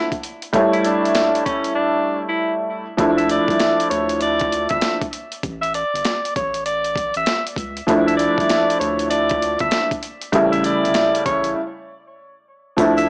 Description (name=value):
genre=hip hop, boom-bap hip-hop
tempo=98 BPM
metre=4/4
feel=swing 63% on 16ths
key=D harmonic minor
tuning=A4 = 441 Hz
part: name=warm tenor saxophone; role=melody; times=0.0-13.1 s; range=C#4 to E5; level=-21 LUFS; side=equal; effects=high-pass filter, low-pass filter, analog delay
part: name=dark upright piano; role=accompaniment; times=0.0-13.1 s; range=C#3 to C#5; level=-18 LUFS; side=equal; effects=cassette tape, high-pass filter, low-pass filter
part: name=boom bap sampler-style drum kit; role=drums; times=0.1-13.1 s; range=hi-hat, kick drum, snare drum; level=-25 LUFS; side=equal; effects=none
part: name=round analog bass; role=bass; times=3.0-13.1 s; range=G1 to D2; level=-32 LUFS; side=equal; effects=transformer saturation
part: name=egg shaker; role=percussion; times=12.8-13.1 s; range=none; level=-38 LUFS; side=equal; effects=none
room=light reverb, small room reverb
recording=dry, gritty hardware recording, cassette tape, small speaker sound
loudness=-16 LUFS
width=side -32 dB against mid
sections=0.0-3.0 A section; 3.0-13.1 B section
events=break 1.8-3.0, 5.4-7.9, 11.6-12.8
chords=0.0 Dmadd9; 0.5 A7; 3.0 Dmadd9; 5.4 N.C.; 7.9 Dmadd9; 10.3 A7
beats=| 0.54 1.15 1.76 2.38 | 2.99 3.60 4.21 4.82 | 5.44 6.05 6.66 7.27 | 7.88 8.50 9.11 9.72 | 10.33 10.95 11.56 12.17 | 12.78